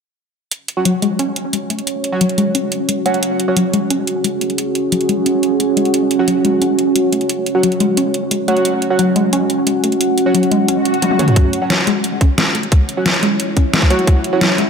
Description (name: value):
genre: dark technical drum and bass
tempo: 177 BPM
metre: 4/4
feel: straight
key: F# minor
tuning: A4 = 440 Hz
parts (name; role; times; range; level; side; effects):
- deep dark ambient pad; sustained chords; 1.5-14.7 s; C#4 to F#5; -18 LUFS; right 1 dB; chorus, built-in reverb, sidechain pumping
- dubstep drum kit; drums; 0.5-14.7 s; hi-hat, snare drum, toms; -18 LUFS; equal; none
- band-passed chord stab; stabs; 0.8-3.6, 6.2-14.4 s; F#3 to F#4; -21 LUFS; right 2 dB; chorus, phaser, analog delay
- soft round pluck; arpeggios; 0.9-14.7 s; F#3 to C#4; -19 LUFS; left 2 dB; chorus, sidechain pumping, analog delay
- swell; sound effects; 10.8-11.4 s; none; -26 LUFS; left 3 dB; none
- electronic kick drum; drums; 11.4-14.1 s; none; -12 LUFS; equal; overdrive
room: wet church reverb, RT60 2.8 s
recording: dreamy mix soaked in reverb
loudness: -13 LUFS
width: side -6 dB against mid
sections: 0.5-14.7 A section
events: swell 10.8-11.4; drum fill 11.0-11.4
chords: 0.5 F#5